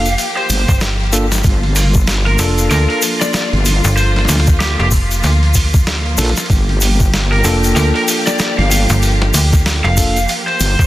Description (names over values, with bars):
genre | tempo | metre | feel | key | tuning
glitch hop | 95 BPM | 4/4 | swing 60% on 16ths | G minor | A4 = 440 Hz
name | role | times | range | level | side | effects
lead guitar through a small cranked amp | melody | 0.0-10.9 s | G4 to F5 | -20 LUFS | equal | overdrive, tape echo
rich studio string section | sustained chords | 0.0-10.9 s | F3 to G4 | -23 LUFS | equal | sidechain pumping
bell-like tine electric piano | stabs | 0.0-10.2 s | Bb3 to A4 | -22 LUFS | equal | fast stereo tremolo, vintage 12-bit sampler grit, sidechain pumping, tape echo
slap-like FM bass | bass | 0.0-10.9 s | F1 to D2 | -15 LUFS | equal | none
boom bap sampler-style drum kit | drums | 0.1-10.9 s | hi-hat, snare drum | -20 LUFS | right 1 dB | soft clipping on snare
egg shaker | percussion | 0.1-10.9 s | none | -23 LUFS | left 4 dB | none
wobble bass | bass | 0.5-10.8 s | G1 to Bb1 | -14 LUFS | equal | chorus
electronic kick drum | drums | 0.7-10.9 s | none | -12 LUFS | equal | none
room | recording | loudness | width
light reverb, digital ambience | dense, heavily limited modern master | -11 LUFS | side -15 dB against mid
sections
0.0-10.9 A section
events
none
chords
0.0 Gm7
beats
0.18 0.81 | 1.45 2.08 2.71 3.34 | 3.97 4.60 5.23 5.87 | 6.50 7.13 7.76 8.39 | 9.02 9.65 10.29